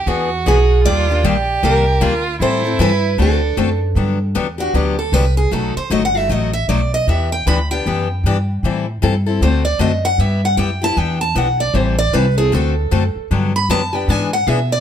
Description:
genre	acoustic string swing (jazz manouche)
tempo	154 BPM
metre	4/4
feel	swing 61% on 8ths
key	G major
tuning	A4 = 441 Hz
part	warm violin	second line	0.0-3.8 s	D4 to G4	-22 LUFS	right 4 dB	none
part	upright bass	bass	0.0-14.8 s	G1 to B2	-18 LUFS	equal	none
part	picked steel-string acoustic guitar	accompaniment	0.1-14.6 s	B2 to A4	-20 LUFS	left 6 dB	none
part	picked steel-string acoustic guitar	melody	0.5-14.8 s	F#4 to B5	-19 LUFS	right 3 dB	none
room	light reverb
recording	none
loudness	-14 LUFS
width	side -9 dB against mid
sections	0.0-4.0 A section; 4.0-14.8 B section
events	steel-string acoustic guitar solo 4.0-14.8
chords	0.1 E9; 0.9 Ebmaj9; 2.4 Am7; 3.2 D7; 4.0 Gmaj7; 5.5 B7; 7.1 Em9; 8.6 Am7; 9.4 D7; 10.2 G6; 11.0 Em7; 11.7 Am7; 12.5 D7; 13.3 Gmaj7; 14.1 E7

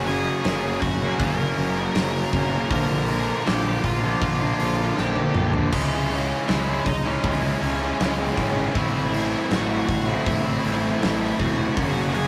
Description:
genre	quiet-loud alternative rock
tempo	79 BPM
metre	4/4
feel	straight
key	unclear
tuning	A4 = 437 Hz
part	octave-fuzz lead guitar	melody	0.0-12.3 s	C#4 to A#5	-32 LUFS	equal	distortion
part	high-gain distorted guitar	riff	0.0-12.3 s	F#2 to E4	-34 LUFS	equal	none
part	thick fuzz guitar	riff	0.0-12.3 s	F#2 to E4	-31 LUFS	equal	distortion
part	thick fuzz guitar	riff	0.0-12.3 s	F#2 to E4	-29 LUFS	equal	distortion
part	fuzz picked electric bass	bass	0.0-12.3 s	E1 to C#2	-31 LUFS	equal	overdrive
part	big rock drum kit	drums	0.1-12.3 s	crash cymbal, hi-hat, kick drum, snare drum, toms	-29 LUFS	equal	none
room	moderate small room reverb, RT60 0.5 s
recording	rough rehearsal-room recording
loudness	-23 LUFS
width	mono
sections	0.0-12.3 A section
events	drum fill 5.0-5.7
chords	0.0 F#; 2.7 A#; 5.7 C#m; 8.8 Am; 11.8 F#

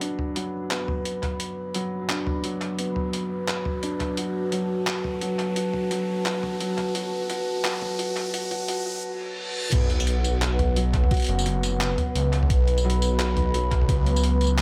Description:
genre	half-time drum and bass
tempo	173 BPM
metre	4/4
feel	swing 58% on 16ths, half-time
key	unclear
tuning	A4 = 440 Hz
part	dark analog pad	sustained chords	0.0-14.6 s	F#3 to B5	-32 LUFS	equal	lush chorus, sidechain pumping
part	felt-muted upright piano	arpeggios	0.0-14.6 s	F#3 to F#4	-33 LUFS	equal	vintage 12-bit sampler grit, low-pass filter, dub echo
part	boom bap sampler-style drum kit	drums	0.0-14.6 s	crash cymbal, handclaps, hi-hat, tambourine, toms	-32 LUFS	equal	analog delay
part	riser, reverse cymbal and sub drop	sound effects	1.7-11.1 s	none	-38 LUFS	equal	none
part	phased detuned saw bass	bass	9.7-14.6 s	F#1 to C#2	-25 LUFS	equal	phaser
part	electronic kick drum	drums	9.7-14.0 s	none	-25 LUFS	equal	overdrive
room	light reverb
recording	echo-heavy mix, high-pass filter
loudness	-25 LUFS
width	mono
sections	0.0-9.7 A section; 9.7-14.6 B section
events	build-up 0.0-9.7; filter sweep on felt piano 0.0-9.7; filter sweep 0.0-9.7; riser 1.7-9.0; reverse cymbal 9.0-9.7; drop 9.7-14.6; impact 9.7-11.1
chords	0.0 B5

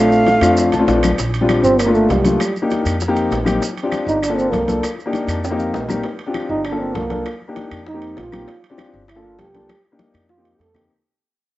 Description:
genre	Afro-Cuban jazz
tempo	198 BPM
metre	4/4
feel	straight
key	unclear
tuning	A4 = 440 Hz
part	breathy bright jazz flute	melody	0.0-0.9 s	F5	-17 LUFS	right 1 dB	none
part	breathy trombone	second line	0.0-10.8 s	G3 to A4	-19 LUFS	right 2 dB	cassette tape
part	dark concert grand piano	accompaniment	0.0-10.9 s	G3 to A5	-19 LUFS	left 2 dB	cassette tape
part	upright bass	bass	0.0-10.9 s	G1 to F2	-24 LUFS	equal	none
part	bongos	percussion	0.1-10.8 s	none	-28 LUFS	left 5 dB	none
part	congas	percussion	0.1-10.8 s	none	-27 LUFS	left 2 dB	none
part	maracas	percussion	0.1-6.0 s	none	-33 LUFS	right 5 dB	none
part	timbales	percussion	0.3-10.9 s	none	-31 LUFS	right 5 dB	none
part	claves	percussion	0.4-10.9 s	none	-34 LUFS	left 4 dB	none
room	moderate spring reverb, RT60 1.2 s, small room reverb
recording	home recording on cassette, nothing above 7.9 kHz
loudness	-15 LUFS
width	side -16 dB against mid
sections	0.0-1.2 A section; 1.2-10.9 B section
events	grand piano fill 0.6-1.2, 5.1-6.0; drum fill 0.7-1.2, 5.4-6.0, 9.7-10.9; fade-out 1.2-10.9; trombone solo 1.2-10.9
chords	0.0 Bbmaj9; 1.2 Bb6; 1.8 Gm7; 2.4 F13sus4; 3.0 F7sus4; 3.6 G7sus4; 4.2 Gm7; 4.8 Ebmaj9#11; 5.4 F7sus4; 6.0 G7sus4; 6.7 Gm7; 7.3 F13sus4; 7.9 F7sus4; 8.5 G7sus4; 9.1 Gm7; 9.7 F13sus4; 10.3 F7sus4

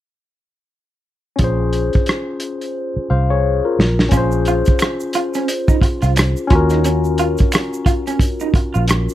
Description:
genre	R&B, neo-soul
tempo	88 BPM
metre	4/4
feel	swing 58% on 16ths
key	Bb minor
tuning	A4 = 440 Hz
part	barky tine electric piano	accompaniment	1.4-9.1 s	Db4 to F5	-20 LUFS	left 4 dB	overdrive, phaser
part	vintage muted fingered electric bass	bass	1.4-9.1 s	Bb1 to Eb2	-17 LUFS	equal	none
part	warm soul drum kit	drums	1.4-9.1 s	hi-hat, kick drum, rim click, snare drum	-16 LUFS	equal	none
part	electric guitar through a small old amp	second line	4.1-8.9 s	Db4 to F4	-23 LUFS	right 6 dB	tremolo
part	egg shaker and finger snaps	percussion	4.1-9.1 s	none	-29 LUFS	right 4 dB	none
room	light reverb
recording	dark, warm production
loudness	-14 LUFS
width	side -13 dB against mid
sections	1.4-4.1 A section; 4.1-9.1 B section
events	drum fill 2.8-4.1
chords	1.4 Bbm9; 3.8 Bb5; 4.1 Bbm9; 6.5 Ebm9

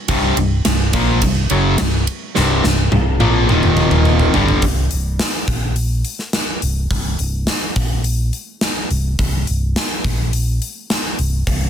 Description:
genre	hard rock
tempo	105 BPM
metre	4/4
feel	straight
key	unclear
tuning	A4 = 440 Hz
part	distorted electric guitar	riff	0.1-4.6 s	C2 to Bb3	-20 LUFS	right 10 dB	overdrive
part	overdriven semi-hollow guitar	riff	0.1-4.6 s	C2 to Bb3	-19 LUFS	left 12 dB	none
part	fingered electric bass	bass	0.1-11.7 s	C1 to Bb1	-18 LUFS	equal	none
part	gated 80s drum kit	drums	0.1-11.6 s	hi-hat, kick drum, ride cymbal, snare drum, toms	-19 LUFS	equal	none
room	small room ambience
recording	dense, heavily limited modern master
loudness	-15 LUFS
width	side -9 dB against mid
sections	0.0-4.6 A section; 4.6-11.7 B section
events	drum fill 2.4-4.6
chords	0.0 C5; 3.5 Eb5; 4.3 G5; 4.6 N.C.

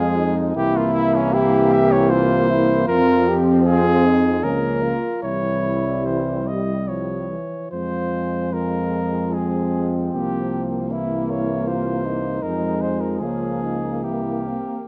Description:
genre	classical, hymn-like piece for brass band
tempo	68-80 BPM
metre	3/4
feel	rubato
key	F minor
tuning	A4 = 440 Hz
part	warm flugelhorn	melody	0.0-14.9 s	Db4 to E5	-27 LUFS	equal	none
part	warm French horn section	second line	0.0-14.9 s	G3 to C4	-27 LUFS	equal	none
part	clear euphonium	accompaniment	0.0-14.8 s	C4 to G4	-27 LUFS	equal	none
part	warm trombone	accompaniment	0.0-14.6 s	E3 to G3	-31 LUFS	equal	none
part	warm tuba	bass	0.0-14.6 s	C2 to F2	-26 LUFS	equal	none
room	moderate recital hall reverb, RT60 1.7 s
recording	close, detailed microphones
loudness	-20 LUFS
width	mono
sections	0.0-14.9 A section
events	none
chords	0.0 Fm; 0.6 C7; 2.9 Fm; 4.4 Bbm/Db; 5.2 C; 7.7 Fm; 10.1 C7; 12.4 Fm; 13.2 Bbm/Db; 14.0 C7

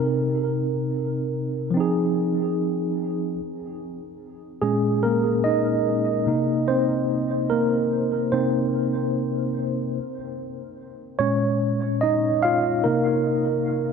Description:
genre	R&B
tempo	73 BPM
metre	4/4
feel	straight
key	Bb minor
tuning	A4 = 440 Hz
part	mellow tine electric piano	solo	0.0-13.9 s	Bb2 to F5	-21 LUFS	equal	medium stereo tremolo, diffuse ambient delay
room	moderate plate reverb, RT60 2.7 s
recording	dreamy mix soaked in reverb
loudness	-21 LUFS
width	side -6 dB against mid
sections	0.0-3.4 A section; 3.4-13.9 B section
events	tine electric piano solo 3.4-13.9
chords	0.0 Cm7; 1.8 Fm7; 3.4 Bbm7; 6.3 Cm7; 10.0 Bbm7; 12.8 Cm7

